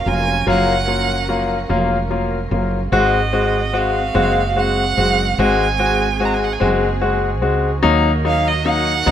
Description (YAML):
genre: six-eight pop ballad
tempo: 49 BPM (dotted quarters)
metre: 6/8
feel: straight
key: unclear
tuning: A4 = 438 Hz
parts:
  - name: warm violin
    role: melody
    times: 0.0-9.1 s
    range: Eb5 to Bb5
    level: -21 LUFS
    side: right 6 dB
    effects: none
  - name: warm studio string section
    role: sustained chords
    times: 0.0-9.1 s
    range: Eb3 to Bb4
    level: -28 LUFS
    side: right 2 dB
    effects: none
  - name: woody fretless electric bass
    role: bass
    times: 0.0-9.1 s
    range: F1 to Eb2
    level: -21 LUFS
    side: right 1 dB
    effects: none
  - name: clear concert grand piano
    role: accompaniment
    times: 0.1-9.1 s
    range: Gb3 to Gb4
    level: -18 LUFS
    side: left 3 dB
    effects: none
room: light reverb, small room ambience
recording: rough home demo mix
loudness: -15 LUFS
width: side -10 dB against mid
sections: 0.0-7.8 A section; 7.8-9.1 B section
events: none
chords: 0.0 Gbmaj7; 2.9 Ab7; 7.8 Gb6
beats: | 0.48 1.71 | 2.93 4.16 | 5.39 6.62 | 7.84 9.07